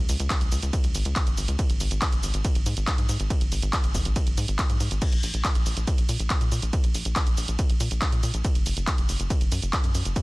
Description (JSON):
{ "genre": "uplifting trance", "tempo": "140 BPM", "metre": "4/4", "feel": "straight", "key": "unclear", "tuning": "A4 = 440 Hz", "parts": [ { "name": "tight sequencer bass", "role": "bass", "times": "0.0-10.1 s", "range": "Gb1 to Bb2", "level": "-27 LUFS", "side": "equal", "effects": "sidechain pumping" }, { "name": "punchy analog drum machine", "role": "drums", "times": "0.1-10.2 s", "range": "crash cymbal, handclaps, hi-hat, ride cymbal, shaker", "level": "-30 LUFS", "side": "right 1 dB", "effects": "none" }, { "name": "electronic kick drum", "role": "drums", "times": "0.3-10.2 s", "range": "none", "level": "-24 LUFS", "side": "equal", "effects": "none" } ], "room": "little or no reverb", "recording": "dense, heavily limited modern master", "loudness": "-22 LUFS", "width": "side -23 dB against mid", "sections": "0.0-10.2 A section", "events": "none", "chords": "none" }